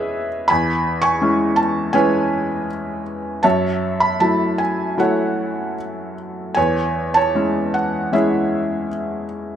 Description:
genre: classical, lyrical solo piano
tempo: 76-83 BPM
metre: 4/4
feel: rubato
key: unclear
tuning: A4 = 440 Hz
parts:
  - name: felt-muted upright piano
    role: solo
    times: 0.0-9.6 s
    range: E2 to C#6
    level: -17 LUFS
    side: equal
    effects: none
room: light reverb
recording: close, detailed microphones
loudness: -17 LUFS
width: side -9 dB against mid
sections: 0.0-9.6 A section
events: none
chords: 0.0 E6; 3.4 F#m7; 6.6 E6

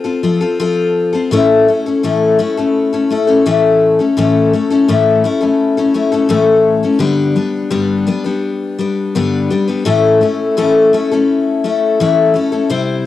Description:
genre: rock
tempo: 84 BPM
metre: 4/4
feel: straight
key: unclear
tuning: A4 = 440 Hz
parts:
  - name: picked steel-string acoustic guitar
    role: solo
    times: 0.0-13.1 s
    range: G2 to C5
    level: -11 LUFS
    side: left 3 dB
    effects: cassette tape
room: light reverb, studio reverb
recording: home recording on cassette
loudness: -11 LUFS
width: side -13 dB against mid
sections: 0.0-7.0 A section; 7.0-13.1 B section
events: none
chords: 0.0 F; 1.3 A; 7.0 G; 9.9 A

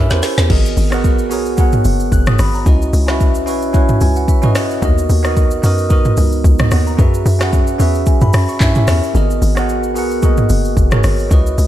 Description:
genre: amapiano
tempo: 111 BPM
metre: 4/4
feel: swing 55% on 16ths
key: G# minor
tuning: A4 = 440 Hz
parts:
  - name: bell-like tine electric piano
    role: accompaniment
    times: 0.0-11.7 s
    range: A#3 to F#6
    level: -18 LUFS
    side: right 2 dB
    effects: phaser
  - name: hollow log drum bass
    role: bass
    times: 0.0-11.7 s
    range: F#1 to G2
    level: -15 LUFS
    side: equal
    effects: none
  - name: deep house drum kit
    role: drums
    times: 0.1-11.7 s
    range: crash cymbal, handclaps, hi-hat, kick drum, rim click, shaker, snare drum, toms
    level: -15 LUFS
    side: equal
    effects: none
room: light reverb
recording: none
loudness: -11 LUFS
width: side -12 dB against mid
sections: 0.0-11.7 A section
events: drum fill 0.0-0.5; tine electric piano fill 3.7-4.8; break 9.1-10.2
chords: 0.5 G#m9; 2.7 C#m11; 4.8 Bmaj7/D#; 7.0 F#9sus4; 8.6 Gdim7; 9.1 G#m9

